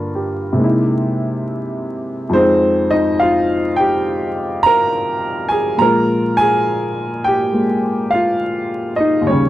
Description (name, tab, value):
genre	solo jazz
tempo	69 BPM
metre	4/4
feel	swing 67% on 8ths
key	unclear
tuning	A4 = 440 Hz
part	warm upright piano	solo	0.0-9.5 s	Eb2 to Bb5	-14 LUFS	equal	none
room	light reverb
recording	dry, close 1970s-style studio recording, vinyl crackle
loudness	-14 LUFS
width	side -14 dB against mid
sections	0.0-9.5 A section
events	none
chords	0.0 Gm7; 0.6 C7alt; 2.3 Fm7; 5.8 Bb5